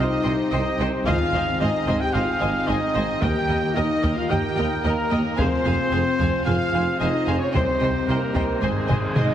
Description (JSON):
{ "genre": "cinematic, epic orchestral film score", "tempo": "111 BPM", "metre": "4/4", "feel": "straight", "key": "Ab major", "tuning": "A4 = 440 Hz", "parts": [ { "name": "warm symphonic violin section", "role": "melody", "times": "0.0-9.2 s", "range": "Ab4 to G5", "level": "-34 LUFS", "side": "left 3 dB", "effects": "none" }, { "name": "rich symphonic violin section", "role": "second line", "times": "0.0-9.2 s", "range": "Eb5 to Ab5", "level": "-33 LUFS", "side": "left 2 dB", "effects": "none" }, { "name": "rich symphonic viola section", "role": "accompaniment", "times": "0.0-9.3 s", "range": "Ab4 to Eb5", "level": "-32 LUFS", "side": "equal", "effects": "none" }, { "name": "dark French horn section", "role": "sustained chords", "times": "0.0-9.3 s", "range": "Ab3 to G4", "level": "-27 LUFS", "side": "left 4 dB", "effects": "none" }, { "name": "pipe organ, foundations", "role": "sustained chords", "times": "0.0-9.3 s", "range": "Bb3 to Eb5", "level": "-29 LUFS", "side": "equal", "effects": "none" }, { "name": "bright trumpet section", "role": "stabs", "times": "0.0-9.3 s", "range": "Ab4 to G5", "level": "-27 LUFS", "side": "right 1 dB", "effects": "none" }, { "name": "mellow tuba", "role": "bass", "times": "0.0-9.3 s", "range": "F1 to Eb2", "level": "-30 LUFS", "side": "right 3 dB", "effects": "none" }, { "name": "rich symphonic cello section", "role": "bass", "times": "0.0-9.2 s", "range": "Eb2 to C3", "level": "-30 LUFS", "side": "right 2 dB", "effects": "none" }, { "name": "warm studio double bass section", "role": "bass", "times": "0.0-9.2 s", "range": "F1 to Eb2", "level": "-30 LUFS", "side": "right 2 dB", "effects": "none" }, { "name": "taiko ensemble", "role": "drums", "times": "1.1-9.3 s", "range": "none", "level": "-27 LUFS", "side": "equal", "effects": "none" }, { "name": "timpani", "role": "percussion", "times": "1.1-4.0, 8.6-9.3 s", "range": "Ab2 to Eb3", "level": "-33 LUFS", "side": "left 1 dB", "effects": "none" }, { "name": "large flute ensemble", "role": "second line", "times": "9.2-9.3 s", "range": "Eb5", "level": "-26 LUFS", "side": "right 4 dB", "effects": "none" }, { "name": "bright trombone section", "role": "sustained chords", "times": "9.2-9.3 s", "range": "Ab3", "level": "-29 LUFS", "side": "right 4 dB", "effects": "none" } ], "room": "wet scoring stage reverb, RT60 1.8 s", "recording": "heavily compressed radio sound, multiband compression", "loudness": "-20 LUFS", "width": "side -10 dB against mid", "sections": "0.0-9.3 A section", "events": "timpani fill 8.6-9.3; drum fill 8.9-9.3", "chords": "0.0 Cm; 1.1 Ab; 3.2 Eb; 5.4 Fm; 7.5 Cm; 8.6 Ab", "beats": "0.52 | 1.06 1.60 2.14 2.68 | 3.22 3.76 4.30 4.84 | 5.38 5.92 6.46 7.01 | 7.55 8.09 8.63 9.16" }